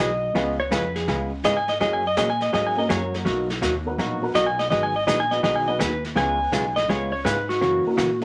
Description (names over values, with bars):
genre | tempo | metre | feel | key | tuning
country, western swing | 165 BPM | 4/4 | swing 66% on 8ths | unclear | A4 = 436 Hz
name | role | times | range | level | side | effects
clean lap steel guitar | second line | 0.0-8.2 s | F#4 to G#5 | -25 LUFS | equal | none
hollow-body jazz guitar | accompaniment | 0.0-8.1 s | B2 to G#4 | -28 LUFS | equal | none
upright bass | bass | 0.0-8.2 s | G#1 to A#2 | -33 LUFS | equal | none
honky-tonk upright piano | accompaniment | 0.3-8.2 s | A#3 to B4 | -34 LUFS | equal | none
vintage brush drum kit | drums | 0.4-8.2 s | brushed snare drum, hi-hat, snare drum | -34 LUFS | equal | none
room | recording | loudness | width
wet studio reverb, RT60 0.5 s | none | -23 LUFS | mono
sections
0.0-8.2 A section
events
electric slide guitar solo 0.0-8.2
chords
0.3 C#7; 1.8 F#add9; 3.3 Bmaj7; 4.7 G#m7; 6.2 C#7; 7.6 F#7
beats
| 0.35 0.71 1.08 1.44 | 1.80 2.17 2.53 2.90 | 3.26 3.62 3.98 4.35 | 4.71 5.07 5.44 5.80 | 6.16 6.53 6.89 7.25 | 7.61 7.98